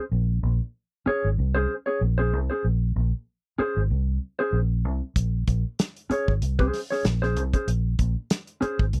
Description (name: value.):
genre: funk.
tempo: 95 BPM.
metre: 4/4.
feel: swing 56% on 16ths.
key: unclear.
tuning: A4 = 440 Hz.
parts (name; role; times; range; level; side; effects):
vintage muted fingered electric bass; bass; 0.1-9.0 s; Ab1 to C2; -26 LUFS; equal; none.
mellow electric guitar; accompaniment; 1.1-8.8 s; Db4 to Db5; -28 LUFS; equal; none.
warm soul drum kit; drums; 5.2-9.0 s; hi-hat, kick drum, snare drum; -28 LUFS; equal; none.
room: little or no reverb.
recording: dry, close 1970s-style studio recording.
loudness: -26 LUFS.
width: mono.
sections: 0.0-9.0 A section.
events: none.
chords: 0.0 Bbm9.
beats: | 0.12 0.75 1.38 2.01 | 2.64 3.27 3.90 4.53 | 5.16 5.79 6.42 7.05 | 7.67 8.30 8.93.